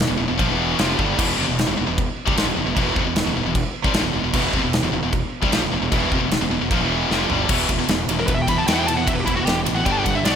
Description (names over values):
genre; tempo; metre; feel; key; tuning
heavy metal; 152 BPM; 4/4; straight; E minor; A4 = 441 Hz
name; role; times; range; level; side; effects
heavy high-gain guitar; riff; 0.0-10.4 s; E2 to B3; -24 LUFS; right 9 dB; distortion
scooped high-gain guitar; riff; 0.0-10.4 s; E2 to B3; -23 LUFS; left 10 dB; distortion
fuzz fingered electric bass; bass; 0.0-10.4 s; E1 to G2; -26 LUFS; equal; overdrive
big rock drum kit; drums; 0.0-10.3 s; china cymbal, crash cymbal, kick drum, ride cymbal, snare drum, toms; -23 LUFS; equal; none
high-gain lead guitar; melody; 8.2-10.3 s; E4 to B5; -22 LUFS; equal; distortion
room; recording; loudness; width
moderate recital hall reverb, RT60 1.6 s, small room ambience; big arena sound; -18 LUFS; side -8 dB against mid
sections
0.0-7.5 A section; 7.5-10.4 B section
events
drum fill 7.1-7.5; lead electric guitar solo 7.5-10.4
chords
0.0 Em; 7.5 E5; 9.9 G5